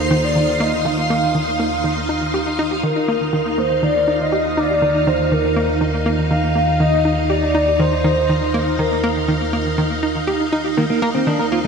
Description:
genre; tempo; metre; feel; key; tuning
ambient; 121 BPM; 4/4; straight; unclear; A4 = 440 Hz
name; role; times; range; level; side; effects
breathy flute-like synth lead; melody; 0.0-9.5 s; Bb4 to F5; -20 LUFS; equal; analog chorus, analog delay
string machine, full ensemble; sustained chords; 0.0-11.7 s; Eb4 to C6; -21 LUFS; right 1 dB; ensemble chorus
hollow square pluck; riff; 0.0-11.7 s; Eb3 to G4; -21 LUFS; equal; chorus, analog delay
analog drone; bass; 0.0-11.7 s; Eb2; -24 LUFS; equal; chorus, tube saturation
semi-hollow electric guitar; arpeggios; 10.8-11.7 s; Bb3 to Bb4; -19 LUFS; right 1 dB; auto-pan, analog delay
room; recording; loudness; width
wet plate reverb, RT60 3.5 s; dreamy mix soaked in reverb; -16 LUFS; side -6 dB against mid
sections
0.0-2.8 A section; 2.8-11.7 A section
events
none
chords
0.0 Ebsus2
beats
0.36 | 0.86 1.35 1.85 2.34 | 2.84 3.34 3.83 4.33 | 4.82 5.32 5.82 6.31 | 6.81 7.30 7.80 8.29 | 8.79 9.29 9.78 10.28 | 10.77 11.27

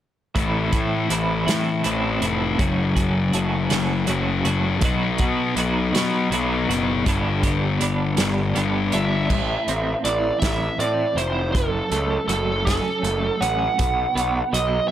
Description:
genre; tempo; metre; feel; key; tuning
quiet-loud alternative rock; 54 BPM (dotted quarters); 6/8; straight; unclear; A4 = 439 Hz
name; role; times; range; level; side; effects
twelve-string electric guitar; arpeggios; 0.3-14.9 s; F#2 to G4; -27 LUFS; right 4 dB; tremolo
thick fuzz guitar; riff; 0.4-9.3 s; F#2 to B3; -23 LUFS; left 6 dB; distortion
fuzz picked electric bass; bass; 0.4-14.8 s; F1 to B2; -25 LUFS; equal; overdrive
loose indie drum kit; drums; 0.4-14.7 s; crash cymbal, hi-hat, kick drum, snare drum; -25 LUFS; right 1 dB; none
biting lead guitar; melody; 8.9-14.9 s; A4 to F#5; -23 LUFS; right 2 dB; overdrive
room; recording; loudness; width
light reverb, studio reverb; none; -19 LUFS; side -11 dB against mid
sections
0.4-9.3 A section; 9.3-14.9 B section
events
none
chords
0.4 Am; 2.6 F#m; 4.8 B; 7.1 G; 9.3 Am; 11.6 F#m; 13.8 B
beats
| 0.35 1.47 | 2.59 3.71 | 4.83 5.95 | 7.07 8.19 | 9.31 10.44 | 11.56 12.68 | 13.80

